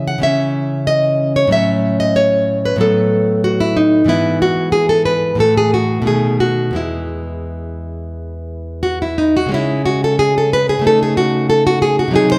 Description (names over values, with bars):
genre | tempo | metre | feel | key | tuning
classical, baroque-style dance for nylon-string guitar | 86-94 BPM | 4/4 | rubato | E major | A4 = 441 Hz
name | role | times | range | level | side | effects
nylon-string guitar | solo | 0.0-12.4 s | E2 to F#5 | -16 LUFS | equal | none
room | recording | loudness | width
moderate concert hall reverb, RT60 1.9 s | none | -15 LUFS | mono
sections
0.0-9.5 A section; 9.5-12.4 A section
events
none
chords
0.0 C#m; 1.5 F#m/A; 2.8 B5/A; 4.1 E/G#; 5.4 F#m7/A; 6.1 B7; 6.8 E; 9.5 C#5; 10.8 F#m69/C#